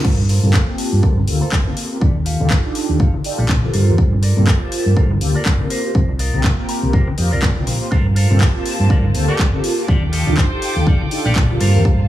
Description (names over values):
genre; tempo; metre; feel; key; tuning
filtered disco house; 122 BPM; 4/4; swing 57% on 16ths; G minor; A4 = 440 Hz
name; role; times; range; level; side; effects
warm chamber violin section; sustained chords; 0.0, 7.9-12.1 s; Bb3 to D6; -28 LUFS; right 1 dB; sidechain pumping, low-pass filter
electric guitar with an envelope filter; riff; 0.0-12.0 s; F4 to Bb5; -28 LUFS; equal; vintage 12-bit sampler grit, sidechain pumping, low-pass filter
hollow-body short-scale fingered electric bass; bass; 0.0-12.1 s; G1 to G2; -16 LUFS; equal; sidechain pumping, low-pass filter
electronic kick drum; drums; 0.0-12.0 s; none; -16 LUFS; equal; overdrive
house drum kit; drums; 0.0-11.7 s; crash cymbal, handclaps, hi-hat; -24 LUFS; left 1 dB; overdrive, sidechain pumping on hats, sidechain pumping on cymbals
tambourine and congas; percussion; 0.1-12.1 s; none; -26 LUFS; left 4 dB; sidechain pumping on perc, low-pass filter on perc
mellow synth brass; accompaniment; 0.4-11.8 s; Bb3 to A5; -24 LUFS; right 1 dB; chorus, phaser, sidechain pumping, low-pass filter
bright horn section; melody; 9.3-10.8 s; G4 to C5; -29 LUFS; equal; sidechain pumping, low-pass filter, tape echo
room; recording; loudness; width
little or no reverb; small room ambience; -14 LUFS; side -13 dB against mid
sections
0.0-12.1 A section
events
band accent 0.0; filter sweep 0.0-12.1; clean electric guitar fill 6.4-7.9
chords
0.0 Gm11; 2.0 Ebmaj9#11; 3.7 Gm11; 5.7 C7sus4; 7.9 Gm11; 9.9 Ebmaj9#11